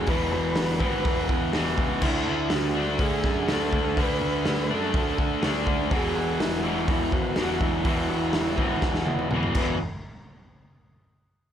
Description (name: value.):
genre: garage rock duo or trio.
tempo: 123 BPM.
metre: 4/4.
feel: straight.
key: E mixolydian.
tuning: A4 = 438 Hz.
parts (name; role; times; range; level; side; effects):
overdriven combo organ; melody; 0.0-9.8 s; B3 to B4; -30 LUFS; equal; none.
raw garage guitar; riff; 0.0-9.8 s; E2 to D4; -26 LUFS; equal; overdrive.
warm concert grand piano; bass; 0.0-9.8 s; E1 to D3; -30 LUFS; equal; none.
raw garage drum kit; drums; 0.1-9.7 s; crash cymbal, hi-hat, kick drum, snare drum, toms; -28 LUFS; equal; none.
room: little or no reverb.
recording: none.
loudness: -22 LUFS.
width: side -9 dB against mid.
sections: 0.0-9.8 A section; 9.8-11.5 B section.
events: drum fill 8.8-9.8.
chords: 0.0 E5; 2.0 D; 5.9 E; 9.6 E5; 9.8 N.C..